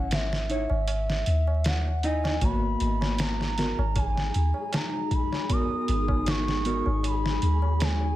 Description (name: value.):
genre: trip hop.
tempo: 78 BPM.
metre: 4/4.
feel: straight.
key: G# minor.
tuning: A4 = 435 Hz.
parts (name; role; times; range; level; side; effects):
pure breathy sine lead; melody; 0.0-8.2 s; E5 to D#6; -32 LUFS; equal; chorus, tape echo.
mellow electric guitar; accompaniment; 0.0-6.9 s; A#3 to D#5; -32 LUFS; equal; tremolo, tape echo.
soft 808-style bass; bass; 0.0-8.2 s; G#1 to D#2; -26 LUFS; equal; tube saturation.
trip hop sampler-style drum kit; drums; 0.1-8.0 s; hi-hat, kick drum, snare drum; -29 LUFS; equal; studio reverb.
tabla; percussion; 0.1-8.2 s; none; -42 LUFS; right 5 dB; none.
deep dark ambient pad; sustained chords; 3.5-8.2 s; G#3 to F#4; -34 LUFS; left 2 dB; chorus, built-in reverb.
flickering grainy texture; texture; 3.1-8.2 s; G#4; -41 LUFS; right 2 dB; built-in reverb.
room: digital ambience.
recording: vinyl crackle.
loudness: -24 LUFS.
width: side -14 dB against mid.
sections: 0.0-8.2 A section.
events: none.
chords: 0.0 C#madd9/G#; 2.4 G#m7.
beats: 0.11 0.88 1.65 | 2.42 3.19 3.96 4.73 | 5.50 6.26 7.04 7.80.